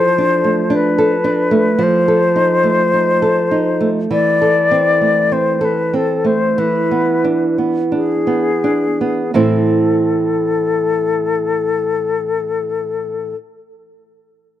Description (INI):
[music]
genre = romantic duo for flute and classical guitar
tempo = 41-56 BPM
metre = 4/4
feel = rubato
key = A minor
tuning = A4 = 441 Hz
[part]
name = concert flute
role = melody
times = 0.0-13.4 s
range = G#4 to D5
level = -16 LUFS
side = left 4 dB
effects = none
[part]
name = nylon-string guitar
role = accompaniment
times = 0.0-13.3 s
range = A2 to C5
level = -16 LUFS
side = right 2 dB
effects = none
[sound]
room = studio reverb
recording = dry, close 1970s-style studio recording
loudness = -13 LUFS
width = side -12 dB against mid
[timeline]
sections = 0.0-9.3 A section; 9.3-14.6 B section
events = slowing down 0.0-9.3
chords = 0.0 Dm/F; 1.8 F7; 4.1 Am/E; 6.6 E7; 9.3 Am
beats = 0.74 1.81 2.94 | 4.11 5.33 6.59 7.93 | 9.35 10.72 12.10